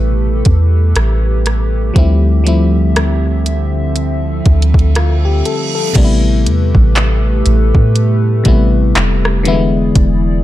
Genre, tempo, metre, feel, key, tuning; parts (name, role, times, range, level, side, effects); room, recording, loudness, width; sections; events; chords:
contemporary R&B; 60 BPM; 4/4; swing 58% on 16ths; A minor; A4 = 440 Hz
FM electric piano; accompaniment; 0.0-10.4 s; B2 to A4; -18 LUFS; left 4 dB; chorus
hollow soft pad; sustained chords; 0.0-10.4 s; D3 to E5; -21 LUFS; right 1 dB; chorus
soft 808-style bass; bass; 0.0-10.4 s; E1 to A2; -12 LUFS; equal
smooth R&B drum kit; drums; 0.5-10.2 s; crash cymbal, handclaps, hi-hat, kick drum, rim click; -14 LUFS; equal
reverse cymbal; sound effects; 5.1-6.0 s; -24 LUFS; right 7 dB
digital ambience; dark, warm production; -10 LUFS; side -14 dB against mid
0.0-6.0 A section; 6.0-10.4 B section
reverse cymbal 5.1-6.0
0.0 Am9; 2.0 Dm11; 6.0 Am9; 9.5 E7